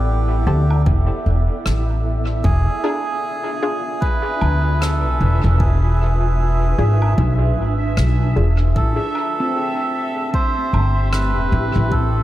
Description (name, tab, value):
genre	ambient dub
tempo	76 BPM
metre	4/4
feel	swing 60% on 16ths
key	A minor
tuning	A4 = 440 Hz
part	melodica	melody	0.0-12.2 s	G4 to C5	-24 LUFS	right 2 dB	dub echo
part	granular cloud pad	sustained chords	0.0-12.2 s	A3 to G#5	-28 LUFS	equal	built-in reverb
part	upright bass	bass	0.0-12.2 s	E1 to D2	-16 LUFS	equal	none
part	bubbling stepped-filter texture	texture	0.0-12.2 s	E5	-31 LUFS	right 3 dB	chorus, built-in reverb
part	filtered dub chord stab	stabs	0.5-8.6 s	C4 to A4	-29 LUFS	left 2 dB	analog chorus, vintage 12-bit sampler grit, dub echo
part	woodblock and rim click	drums	0.7-11.3 s	none	-32 LUFS	equal	dub echo
part	electronic kick drum	drums	0.9-12.1 s	none	-21 LUFS	equal	overdrive
part	handpan	arpeggios	9.4-12.2 s	C4	-28 LUFS	equal	tape echo
room	light reverb, small room ambience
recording	echo-heavy mix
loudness	-16 LUFS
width	side -14 dB against mid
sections	0.0-12.2 A section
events	none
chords	0.0 A7(no3); 2.4 E7b9; 8.8 Am7